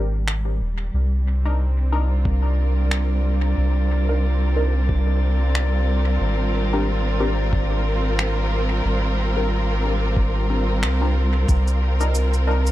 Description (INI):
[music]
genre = ambient dub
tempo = 91 BPM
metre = 4/4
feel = swing 57% on 16ths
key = C minor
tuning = A4 = 440 Hz
[part]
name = warm symphonic string section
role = sustained chords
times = 0.0-12.7 s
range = G3 to Bb4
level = -26 LUFS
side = right 1 dB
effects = vintage 12-bit sampler grit
[part]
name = filtered dub chord stab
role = stabs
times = 0.0-12.7 s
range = C4 to Bb4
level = -30 LUFS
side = left 2 dB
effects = phaser, dub echo
[part]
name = soft dub sub bass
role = bass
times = 0.0-12.7 s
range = Eb1 to C2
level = -20 LUFS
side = equal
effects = tube saturation
[part]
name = electronic finger snaps and shaker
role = drums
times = 0.3-12.7 s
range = none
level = -28 LUFS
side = equal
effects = dub echo
[part]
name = drifting glass-harmonics texture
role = texture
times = 1.7-11.5 s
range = D4 to D5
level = -32 LUFS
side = equal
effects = chorus, built-in reverb
[part]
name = electronic kick drum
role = drums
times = 2.3-11.6 s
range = none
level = -22 LUFS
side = equal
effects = none
[sound]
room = digital ambience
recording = echo-heavy mix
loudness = -18 LUFS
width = side -15 dB against mid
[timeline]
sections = 0.0-11.5 A section; 11.5-12.7 B section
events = band accent 10.8-11.2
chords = 0.0 Abmaj9#11; 0.9 Cm9; 6.2 Abmaj9#11; 11.5 Cm9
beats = 0.28 | 0.94 1.60 2.25 2.91 | 3.57 4.23 4.89 5.55 | 6.21 6.87 7.53 8.19 | 8.85 9.51 10.17 10.83 | 11.49 12.14